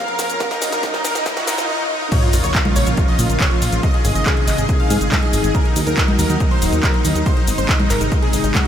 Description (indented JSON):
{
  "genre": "uplifting trance",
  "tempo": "140 BPM",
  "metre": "4/4",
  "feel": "straight",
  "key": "Bb minor",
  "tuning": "A4 = 443 Hz",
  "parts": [
    { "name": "supersaw chords", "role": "melody", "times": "0.0-8.7 s", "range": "Eb4 to F5", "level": "-22 LUFS", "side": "equal", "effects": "analog chorus, sidechain pumping, diffuse ambient delay" },
    { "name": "lush unison pad", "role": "sustained chords", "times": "0.0-8.7 s", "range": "C3 to Bb4", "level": "-24 LUFS", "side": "equal", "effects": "chorus, sidechain pumping" },
    { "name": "riser and sub drop", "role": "sound effects", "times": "0.0-3.8 s", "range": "none", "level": "-28 LUFS", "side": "equal", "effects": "none" },
    { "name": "big-room dance drum kit", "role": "drums", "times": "0.1-8.7 s", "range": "congas, crash cymbal, handclaps, hi-hat, shaker, snare drum", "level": "-22 LUFS", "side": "equal", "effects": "sidechain pumping on hats, high-pass filter on hats, sidechain pumping on perc, high-pass filter on perc, high-pass filter on snare, sidechain pumping on cymbals, high-pass filter on cymbals" },
    { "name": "electronic kick drum", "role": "drums", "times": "0.4-8.6 s", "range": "none", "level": "-18 LUFS", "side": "equal", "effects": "none" },
    { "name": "plucky analog bass", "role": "bass", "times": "2.3-8.5 s", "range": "Eb1 to Bb2", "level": "-20 LUFS", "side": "equal", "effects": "sidechain pumping" }
  ],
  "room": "moderate huge ambient reverb, RT60 7.8 s",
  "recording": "dreamy mix soaked in reverb, high-pass filter",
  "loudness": "-15 LUFS",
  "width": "side -9 dB against mid",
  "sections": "0.0-2.1 A section; 2.1-8.7 B section",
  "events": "build-up 0.0-2.1; drum fill 0.0-1.7; riser 0.0-1.7; drop 2.1-8.7; impact 2.1-3.8",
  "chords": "0.4 Ebm; 2.1 Bbm; 3.8 Ab; 5.5 Ebm; 7.3 Ab"
}